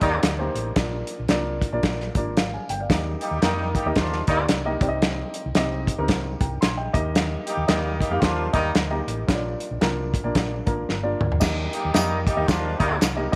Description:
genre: uptempo 1960s-style soul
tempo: 113 BPM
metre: 4/4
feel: swing 60% on 8ths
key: Eb major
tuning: A4 = 443 Hz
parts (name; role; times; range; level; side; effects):
- clear horn section; second line; 0.0-13.0 s; Eb3 to G4; -29 LUFS; equal; none
- dark upright piano; accompaniment; 0.0-13.4 s; Bb3 to C6; -30 LUFS; equal; none
- hollow-body short-scale fingered electric bass; bass; 0.0-13.4 s; G1 to F2; -31 LUFS; equal; none
- warm soul drum kit; drums; 0.0-13.4 s; crash cymbal, hi-hat, kick drum, snare drum, toms; -26 LUFS; equal; none
- tambourine; percussion; 11.4-13.2 s; none; -37 LUFS; equal; none
room: moderate plate reverb, RT60 2.7 s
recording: none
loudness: -23 LUFS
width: mono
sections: 0.0-11.4 A section; 11.4-13.4 A section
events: drum fill 10.9-11.4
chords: 0.0 Eb; 0.8 Bb; 2.9 Eb; 4.8 Cm; 6.9 Eb; 9.3 Bb; 11.4 Eb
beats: 0.23 | 0.76 1.29 1.83 2.36 | 2.89 3.42 3.96 4.49 | 5.02 5.55 6.09 6.62 | 7.15 7.69 8.22 8.75 | 9.29 9.82 10.35 10.88 | 11.42 11.95 12.48 13.02

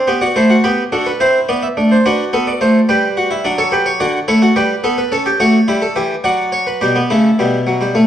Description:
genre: classical, baroque-style 4-part fugue for harpsichord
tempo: 107 BPM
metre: 3/4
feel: straight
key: G major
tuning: A4 = 440 Hz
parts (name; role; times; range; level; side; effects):
- harpsichord; solo; 0.0-8.1 s; A2 to E5; -12 LUFS; equal; none
room: wet recital hall reverb, RT60 1.4 s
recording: worn, warbling old tape, cassette tape, warbly pitch drift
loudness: -12 LUFS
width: side -10 dB against mid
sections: 0.1-6.8 A section; 6.8-8.1 B section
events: none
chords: 0.1 G; 1.2 C; 1.8 D7/A; 2.9 G; 3.4 D/F#; 4.6 G; 5.1 A7; 6.2 D/F#; 6.8 G/B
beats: | 0.08 0.64 1.20 | 1.76 2.33 2.88 | 3.44 4.00 4.56 | 5.12 5.68 6.24 | 6.81 7.38 7.95

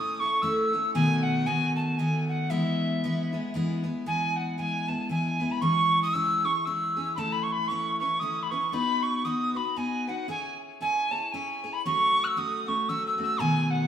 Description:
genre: celtic folk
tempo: 116 BPM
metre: 3/4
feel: swing 58% on 8ths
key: E major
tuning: A4 = 441 Hz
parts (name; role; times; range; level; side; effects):
- mid whistle; melody; 0.0-13.9 s; E5 to F#6; -26 LUFS; right 1 dB; none
- picked steel-string acoustic guitar; accompaniment; 0.0-13.9 s; B2 to C#5; -29 LUFS; left 1 dB; none
room: wet stone room reverb, RT60 1.3 s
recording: band playing live in one room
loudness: -24 LUFS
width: side -9 dB against mid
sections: 0.0-4.1 A section; 4.1-13.9 A section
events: none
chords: 0.0 A; 1.0 B7; 2.5 E; 5.6 C#m/E; 7.2 Aadd9; 8.7 B; 10.3 C#m; 11.9 F#m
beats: 0.43 | 0.95 1.47 1.99 | 2.51 3.02 3.54 | 4.06 4.58 5.10 | 5.62 6.14 6.66 | 7.18 7.70 8.22 | 8.74 9.26 9.78 | 10.29 10.81 11.33 | 11.85 12.37 12.89 | 13.41

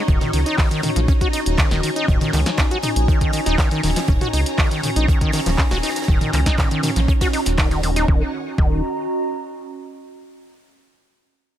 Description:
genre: acid house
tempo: 120 BPM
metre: 4/4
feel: straight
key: unclear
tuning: A4 = 438 Hz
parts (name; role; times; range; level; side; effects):
- string machine, full ensemble; sustained chords; 0.0-8.3 s; Eb4 to Bb5; -28 LUFS; left 1 dB; ensemble chorus, sidechain pumping
- acid bass, saw; riff; 0.0-8.8 s; Eb3 to Gb4; -23 LUFS; equal; overdrive, analog chorus, sidechain pumping, tape echo
- warbly tape-like pad; texture; 0.0-10.0 s; Db4 to Bb5; -27 LUFS; right 1 dB; chorus, built-in reverb, sidechain pumping
- round analog bass; bass; 0.1-8.8 s; Eb1 to Db2; -21 LUFS; equal; sidechain pumping
- electronic kick drum; drums; 0.1-8.7 s; none; -18 LUFS; equal; overdrive
- gated 80s drum kit; drums; 0.1-8.1 s; hi-hat, snare drum; -33 LUFS; right 2 dB; sidechain pumping on hats, high-pass filter on hats, high-pass filter on snare, high-pass filter on room
- punchy analog drum machine; drums; 0.1-8.1 s; handclaps, hi-hat, snare drum, toms; -25 LUFS; equal; none
room: little or no reverb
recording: none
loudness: -16 LUFS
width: side -11 dB against mid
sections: 0.0-8.1 A section; 8.1-10.1 B section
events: drop 0.0-8.1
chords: 0.0 Ebm7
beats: | 0.08 0.58 1.08 1.58 | 2.08 2.58 3.08 3.58 | 4.08 4.58 5.08 5.58 | 6.08 6.58 7.08 7.58 | 8.08 8.58 9.08 9.58

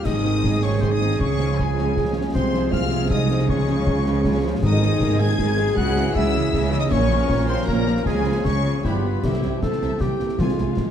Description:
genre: cinematic, heroic adventure film score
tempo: 157 BPM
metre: 3/4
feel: straight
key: unclear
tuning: A4 = 440 Hz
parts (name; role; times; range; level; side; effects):
- warm symphonic violin section; melody; 0.0-10.7 s; C5 to Ab6; -31 LUFS; left 6 dB; none
- concert flute; second line; 0.0-9.2 s; Ab4 to Ab5; -32 LUFS; left 4 dB; none
- warm clarinet; second line; 0.0, 8.8-10.9 s; Fb4 to A4; -28 LUFS; left 2 dB; none
- warm oboe; second line; 0.0-9.2 s; Ab4 to Ab5; -34 LUFS; equal; none
- warm symphonic violin section; second line; 0.0-10.9 s; C4 to A5; -36 LUFS; left 3 dB; none
- warm French horn section; sustained chords; 0.0-9.2 s; Ab3 to Ab4; -28 LUFS; left 5 dB; none
- dark trumpet section; stabs; 0.0-9.0 s; G4 to Bb4; -30 LUFS; equal; none
- rich symphonic cello section; bass; 0.0-10.7 s; G2 to Db3; -26 LUFS; right 3 dB; none
- rich symphonic double bass section; bass; 0.0-10.7 s; G1 to Db2; -24 LUFS; right 3 dB; none
- warm symphonic viola section; accompaniment; 0.1-10.9 s; Eb3 to E4; -28 LUFS; right 2 dB; none
- warm trombone section; sustained chords; 0.1-10.9 s; Db3 to D4; -32 LUFS; right 2 dB; none
- concert snare drum, clash cymbals and concert bass drum; drums; 0.1-10.9 s; none; -27 LUFS; left 1 dB; none
- timpani; percussion; 4.6-5.2, 9.2-10.9 s; Ab2 to C3; -27 LUFS; left 1 dB; none
room: wet concert hall reverb, RT60 2.4 s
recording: dark, warm production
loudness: -18 LUFS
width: side -9 dB against mid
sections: 0.1-9.2 A section; 9.2-10.9 B section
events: none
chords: 0.1 Ab; 1.2 Db; 2.3 Fm/C; 3.5 Db; 4.6 Ab; 5.8 Dbm; 6.9 Bbm; 8.1 Db; 8.8 G7; 9.2 C; 10.4 Fm/C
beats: | 0.05 0.44 0.82 | 1.21 1.59 1.97 | 2.35 2.73 3.11 | 3.49 3.87 4.25 | 4.63 5.01 5.39 | 5.77 6.15 6.53 | 6.91 7.30 7.68 | 8.06 8.45 8.85 | 9.24 9.63 10.02 | 10.40 10.78

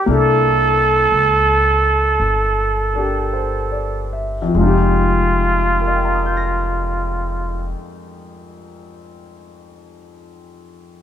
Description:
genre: jazz ballad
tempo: 48-60 BPM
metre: 4/4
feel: swing 68% on 8ths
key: unclear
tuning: A4 = 436 Hz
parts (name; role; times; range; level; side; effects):
- trumpet with plunger mute; melody; 0.0-7.7 s; F4 to A4; -16 LUFS; right 3 dB; none
- warm concert grand piano; accompaniment; 0.0-11.0 s; F2 to Bb6; -23 LUFS; left 4 dB; none
- upright bass; bass; 0.1-7.7 s; F1 to Db2; -20 LUFS; left 1 dB; none
room: moderate echo chamber reverb, RT60 1.4 s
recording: minimal, uncompressed stereo recording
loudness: -14 LUFS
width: side -10 dB against mid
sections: 0.0-4.5 A section; 4.5-9.5 B section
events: slowing down 0.0-4.5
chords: 0.1 C13; 4.5 Fm9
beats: | 0.08 1.11 2.20 3.34 | 4.55 5.79 7.01 8.25

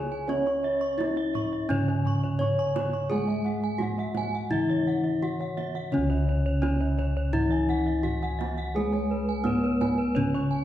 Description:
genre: Javanese gamelan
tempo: 85 BPM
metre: 4/4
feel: straight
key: C# slendro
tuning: A4 = 440 Hz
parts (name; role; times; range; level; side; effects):
- gamelan-type bronze metallophone; melody; 0.0-10.6 s; B3-25c to C#5; -28 LUFS; left 1 dB; none
- gamelan-type bronze metallophone; accompaniment; 0.0-10.6 s; C#3 to C#4; -31 LUFS; equal; none
- gamelan-type bossed gongs; arpeggios; 0.0-10.6 s; B4-25c to C#6; -37 LUFS; left 4 dB; none
- gamelan-type bronze metallophone; arpeggios; 0.0-10.6 s; B4-25c to C#6; -35 LUFS; right 3 dB; none
- gamelan-type bossed gongs; bass; 0.0-10.6 s; C#2 to C#5; -31 LUFS; equal; none
- kendang; percussion; 0.1-10.3 s; none; -36 LUFS; right 3 dB; none
room: wet recital hall reverb, RT60 1.4 s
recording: heard from further back in the room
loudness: -24 LUFS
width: side -12 dB against mid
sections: 0.0-10.6 A section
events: none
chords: none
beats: | 0.27 0.98 1.69 2.39 | 3.10 3.81 4.51 5.22 | 5.92 6.63 7.34 8.04 | 8.75 9.46 10.16

